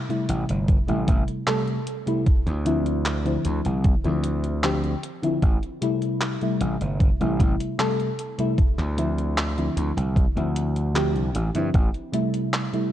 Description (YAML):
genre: vaporwave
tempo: 76 BPM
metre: 4/4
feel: straight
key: D minor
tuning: A4 = 439 Hz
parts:
  - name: mellow FM electric piano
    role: accompaniment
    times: 0.0-12.9 s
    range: C3 to A4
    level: -25 LUFS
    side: left 1 dB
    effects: phaser, wide subtle chorus, tape echo
  - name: detuned 8-bit digital drum machine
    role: drums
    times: 0.1-12.9 s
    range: handclaps, hi-hat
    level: -30 LUFS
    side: equal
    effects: overdrive, vintage 12-bit sampler grit
  - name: gritty slap bass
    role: bass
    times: 0.3-11.9 s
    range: G1 to G2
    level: -25 LUFS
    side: equal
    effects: overdrive
  - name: electronic kick drum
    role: drums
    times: 0.7-11.9 s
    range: none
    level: -19 LUFS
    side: equal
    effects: overdrive, vintage 12-bit sampler grit
room: light reverb, digital ambience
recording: dark, warm production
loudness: -21 LUFS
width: side -12 dB against mid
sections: 0.0-12.9 A section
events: none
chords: 0.0 Am7; 2.3 Dm9; 5.4 Am7; 8.6 Dm9; 11.7 Am7